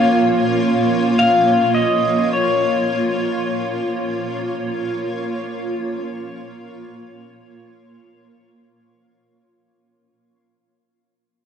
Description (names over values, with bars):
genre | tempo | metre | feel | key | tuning
ambient | free time | none | none | unclear | A4 = 441 Hz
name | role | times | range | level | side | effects
pedal steel guitar | melody | 0.0-8.5 s | Db5 to F5 | -19 LUFS | left 3 dB | cassette tape, tape echo
granular cloud pad | sustained chords | 0.0-9.6 s | Bb3 to Db5 | -19 LUFS | right 1 dB | built-in reverb, cassette tape
room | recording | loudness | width
wet studio reverb, RT60 0.5 s | home recording on cassette | -16 LUFS | side -8 dB against mid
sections
0.0-9.6 A section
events
fade-out 0.6-9.6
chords
0.0 Bbm